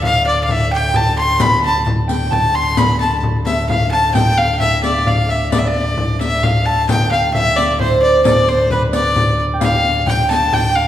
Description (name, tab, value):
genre	medieval dance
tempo	88 BPM (dotted quarters)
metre	6/8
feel	straight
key	D dorian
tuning	A4 = 441 Hz
part	clear fiddle	melody	0.0-10.9 s	B4 to C6	-16 LUFS	left 2 dB	none
part	Celtic harp	second line	0.0-10.9 s	B4 to C6	-20 LUFS	right 3 dB	none
part	chamber organ, principal chorus	drone	0.0-10.9 s	D2 to A2	-22 LUFS	equal	none
part	frame drum	percussion	0.0-10.7 s	none	-19 LUFS	left 1 dB	none
part	riq	percussion	1.4-10.5 s	none	-24 LUFS	left 4 dB	none
room	wet recital hall reverb, RT60 1.7 s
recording	heard from further back in the room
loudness	-13 LUFS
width	side -11 dB against mid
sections	0.0-6.9 A section; 6.9-10.9 A section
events	none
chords	none